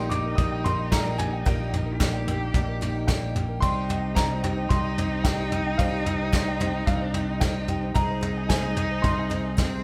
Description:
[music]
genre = indie folk with a building arrangement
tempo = 111 BPM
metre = 4/4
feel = straight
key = C minor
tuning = A4 = 439 Hz
[part]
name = dark upright piano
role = melody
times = 0.0-9.8 s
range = F5 to Eb6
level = -35 LUFS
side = equal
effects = none
[part]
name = warm cello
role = second line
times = 0.0-9.8 s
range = C4 to Ab4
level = -34 LUFS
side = equal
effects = none
[part]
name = picked twelve-string acoustic guitar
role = accompaniment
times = 0.0-9.8 s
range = Bb2 to Ab4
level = -37 LUFS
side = equal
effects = none
[part]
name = mellow brass ensemble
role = sustained chords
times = 0.0-9.8 s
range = C3 to Ab4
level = -45 LUFS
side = equal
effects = none
[part]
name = ukulele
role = arpeggios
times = 0.0-9.8 s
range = G4 to Ab5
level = -40 LUFS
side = equal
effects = none
[part]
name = fingered electric bass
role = bass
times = 0.0-9.8 s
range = Bb1 to C2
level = -31 LUFS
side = equal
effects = none
[part]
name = soft brush drum kit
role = drums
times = 0.1-9.7 s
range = kick drum, snare drum, toms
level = -28 LUFS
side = equal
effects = none
[part]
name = group handclap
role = percussion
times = 0.9-9.7 s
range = none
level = -40 LUFS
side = equal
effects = none
[sound]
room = moderate studio ambience, RT60 0.4 s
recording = band playing live in one room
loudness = -25 LUFS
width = mono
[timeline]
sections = 0.0-9.8 A section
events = none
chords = 0.0 Eb/Bb; 3.6 Cm; 8.0 Ab/C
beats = 0.38 0.92 | 1.46 2.00 2.55 3.09 | 3.63 4.17 4.71 5.25 | 5.79 6.33 6.88 7.42 | 7.96 8.50 9.04 9.58

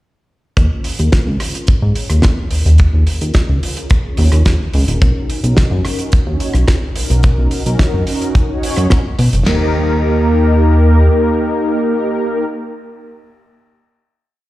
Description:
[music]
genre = nu-disco, nu disco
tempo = 108 BPM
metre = 4/4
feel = straight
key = unclear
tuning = A4 = 440 Hz
[part]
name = mellow synth brass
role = accompaniment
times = 0.6-12.5 s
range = Bb3 to Db5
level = -19 LUFS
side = equal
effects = chorus, sidechain pumping, analog delay
[part]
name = chorused synth bass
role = bass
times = 0.6-11.1 s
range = Eb1 to B2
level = -12 LUFS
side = equal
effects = none
[part]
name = damped 70s drum kit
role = drums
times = 0.6-9.6 s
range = kick drum, ride cymbal, snare drum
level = -13 LUFS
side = equal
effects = studio ambience
[part]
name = damped 70s drum kit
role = drums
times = 0.6-9.4 s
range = hi-hat, rim click, snare drum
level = -22 LUFS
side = right 1 dB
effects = studio ambience
[sound]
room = light reverb, studio ambience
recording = played on a big sound system in a bare room, large studio reverb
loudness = -12 LUFS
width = side -16 dB against mid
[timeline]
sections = 0.6-9.5 groove; 9.5-11.7 final chord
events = filter sweep on analog polysynth 0.6-9.5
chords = 0.6 Eb7sus4; 5.0 Bmaj7; 9.5 Eb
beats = | 0.57 1.13 1.69 2.24 | 2.80 3.35 3.91 4.46 | 5.02 5.57 6.13 6.68 | 7.24 7.80 8.35 8.91 | 9.46 10.02 10.57 11.13

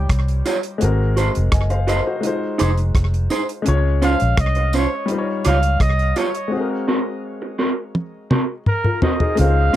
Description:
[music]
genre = lovers rock reggae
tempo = 84 BPM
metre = 4/4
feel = straight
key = unclear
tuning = A4 = 441 Hz
[part]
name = warm trumpet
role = melody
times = 0.0-9.8 s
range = G4 to F5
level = -24 LUFS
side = right 1 dB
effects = tape echo
[part]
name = warm baby grand piano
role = accompaniment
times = 0.0-9.8 s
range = G3 to Ab5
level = -24 LUFS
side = left 3 dB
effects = slapback echo
[part]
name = vintage muted fingered electric bass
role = bass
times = 0.0-9.7 s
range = F1 to Db2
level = -18 LUFS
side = equal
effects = none
[part]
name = damped 70s drum kit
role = drums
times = 0.1-9.8 s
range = hi-hat, kick drum, rim click, toms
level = -20 LUFS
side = equal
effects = none
[part]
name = electric guitar through a small old amp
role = stabs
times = 0.5-9.8 s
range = C4 to Db5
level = -20 LUFS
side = right 2 dB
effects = none
[part]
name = tambourine and woodblock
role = percussion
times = 0.5-6.3 s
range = none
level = -33 LUFS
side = right 5 dB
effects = slapback echo
[sound]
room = light reverb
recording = dry, close 1970s-style studio recording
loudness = -17 LUFS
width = side -13 dB against mid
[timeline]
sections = 0.0-9.4 A section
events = break 6.5-9.4; drum fill 8.0-9.4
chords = 0.0 Eb9; 0.8 Ab9; 2.2 Fm7; 3.7 Dbmaj7; 5.1 Eb9; 6.5 Ab9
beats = 0.10 | 0.81 1.53 2.24 2.95 | 3.67 4.38 5.10 5.81 | 6.52 7.24 7.95 8.66 | 9.38

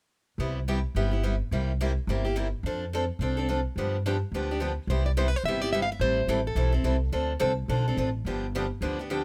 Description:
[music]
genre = acoustic string swing (jazz manouche)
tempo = 214 BPM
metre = 4/4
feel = swing 58% on 8ths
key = C major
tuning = A4 = 440 Hz
[part]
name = picked steel-string acoustic guitar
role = accompaniment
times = 0.4-9.2 s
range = C3 to A4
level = -32 LUFS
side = equal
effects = none
[part]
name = upright bass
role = bass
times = 0.4-9.2 s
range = G1 to G2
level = -31 LUFS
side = equal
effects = none
[part]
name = picked plugged-in steel-string acoustic guitar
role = melody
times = 4.9-6.7 s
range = A4 to F5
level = -32 LUFS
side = equal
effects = none
[sound]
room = little or no reverb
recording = none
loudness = -28 LUFS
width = mono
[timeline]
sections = 0.4-4.9 A section; 4.9-9.2 B section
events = none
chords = 0.4 Cmaj7; 1.5 C7; 2.6 F6; 3.8 G7; 4.9 Cmaj7; 6.0 Am7; 7.1 Dm7; 8.3 G7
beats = | 0.39 0.67 0.95 1.23 | 1.51 1.80 2.08 2.36 | 2.64 2.92 3.20 3.48 | 3.76 4.04 4.32 4.61 | 4.89 5.17 5.45 5.73 | 6.01 6.29 6.57 6.85 | 7.13 7.41 7.69 7.97 | 8.25 8.54 8.82 9.10

